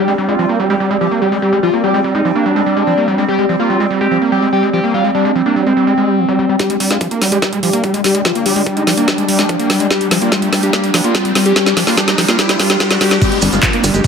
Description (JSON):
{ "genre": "psychedelic trance", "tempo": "145 BPM", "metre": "4/4", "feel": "straight", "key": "G phrygian", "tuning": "A4 = 438 Hz", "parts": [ { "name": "overdriven synth lead", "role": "melody", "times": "0.0-14.1 s", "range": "C4 to G4", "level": "-17 LUFS", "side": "left 1 dB", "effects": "phaser, sidechain pumping, digital delay" }, { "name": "pulsing gated texture", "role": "sustained chords", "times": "0.0-14.1 s", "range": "G3 to D4", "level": "-19 LUFS", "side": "right 2 dB", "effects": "chorus, built-in reverb, sidechain pumping" }, { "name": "screaming distorted acid line", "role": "riff", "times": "0.0-14.1 s", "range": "F3 to Bb3", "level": "-17 LUFS", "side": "moving between left 5 dB and right 4 dB", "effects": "distortion, chorus, auto-pan, sidechain pumping, tape echo" }, { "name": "airy breathy pad", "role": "texture", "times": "0.0-13.2 s", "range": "G4 to G5", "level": "-24 LUFS", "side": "right 1 dB", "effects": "chorus, sidechain pumping" }, { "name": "electronic kick drum", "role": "drums", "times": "6.6-14.1 s", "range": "none", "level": "-17 LUFS", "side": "equal", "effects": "overdrive, high-pass filter on kick" }, { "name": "garage drum kit", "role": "drums", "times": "6.6-14.1 s", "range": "crash cymbal, handclaps, hi-hat, snare drum", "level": "-16 LUFS", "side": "equal", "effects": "overdrive" }, { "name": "riser and downlifter", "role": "sound effects", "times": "7.7-14.1 s", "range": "none", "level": "-22 LUFS", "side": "equal", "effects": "none" }, { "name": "maracas", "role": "percussion", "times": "13.2-14.1 s", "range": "none", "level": "-22 LUFS", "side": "right 4 dB", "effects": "none" }, { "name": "tight sequencer bass", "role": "bass", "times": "13.4-14.0 s", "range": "G1", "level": "-16 LUFS", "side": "equal", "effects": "none" } ], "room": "light reverb", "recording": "none", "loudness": "-11 LUFS", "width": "side -6 dB against mid", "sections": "0.0-6.6 A section; 6.6-13.2 B section", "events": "build-up 6.6-13.2; drum fill 6.6-13.2; filter sweep on analog synth lead 6.6-13.2; filter sweep on synth texture 6.6-13.2; riser 7.7-13.2", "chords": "0.0 G5" }